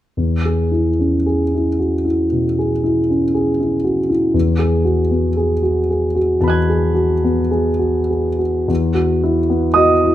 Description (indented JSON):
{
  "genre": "classical, impressionist solo piano",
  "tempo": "50-60 BPM",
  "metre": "4/4",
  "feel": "rubato",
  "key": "E major",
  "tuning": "A4 = 440 Hz",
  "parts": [
    { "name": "dark concert grand piano", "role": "solo", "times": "0.2-10.1 s", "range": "E2 to G#6", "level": "-14 LUFS", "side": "equal", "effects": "none" }
  ],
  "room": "moderate large studio reverb, RT60 1.3 s",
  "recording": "none",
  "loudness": "-14 LUFS",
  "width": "side -13 dB against mid",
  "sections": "0.2-8.7 A section; 8.7-10.1 B section",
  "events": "none",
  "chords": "0.2 E6; 4.3 F#m11/E; 8.7 Esus2"
}